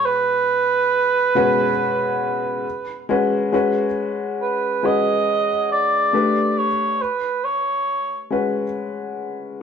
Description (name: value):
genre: R&B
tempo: 69 BPM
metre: 4/4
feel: swing 60% on 16ths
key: unclear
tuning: A4 = 440 Hz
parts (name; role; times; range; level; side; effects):
- mellow cor anglais; melody; 0.0-8.3 s; B4 to D#5; -19 LUFS; right 3 dB; none
- warm upright piano; accompaniment; 0.0-9.6 s; B2 to B4; -21 LUFS; left 3 dB; none
room: wet stone room reverb, RT60 1.0 s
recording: band playing live in one room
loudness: -18 LUFS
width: side -7 dB against mid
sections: 0.0-9.6 A section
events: none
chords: 0.0 G#m11/B; 2.6 G#madd11; 6.1 Gadd9; 7.0 F#sus4